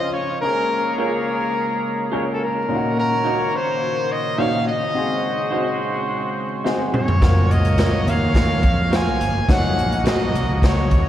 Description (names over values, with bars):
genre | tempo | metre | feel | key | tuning
uptempo 1960s-style soul | 106 BPM | 4/4 | straight | unclear | A4 = 439 Hz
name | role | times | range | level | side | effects
brilliant trumpet | melody | 0.0-11.1 s | A4 to Ab5 | -23 LUFS | left 1 dB | none
clear horn section | second line | 0.0-11.1 s | Ab3 to Eb5 | -29 LUFS | right 1 dB | none
warm grand piano | accompaniment | 0.0-10.1 s | Bb2 to Db5 | -27 LUFS | left 2 dB | none
pipe organ, principal chorus | sustained chords | 0.0-11.1 s | Bb2 to F5 | -29 LUFS | right 1 dB | none
electric guitar through a small old amp | stabs | 1.0-10.2 s | Eb4 to Db5 | -29 LUFS | right 2 dB | none
swinging big-band drum kit | drums | 6.7-11.0 s | hi-hat, kick drum, snare drum, toms | -18 LUFS | equal | none
fingered electric bass | bass | 7.2-11.1 s | Gb1 to F2 | -23 LUFS | equal | none
room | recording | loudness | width
wet cathedral reverb, RT60 4.8 s | band playing live in one room, vinyl crackle | -17 LUFS | side -11 dB against mid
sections
0.0-11.1 A section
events
drum fill 6.7-7.2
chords
0.4 Bbm7; 2.7 Ebm7/Bb; 5.0 Ab7; 7.2 Gbmaj7; 9.5 Ebm7/Gb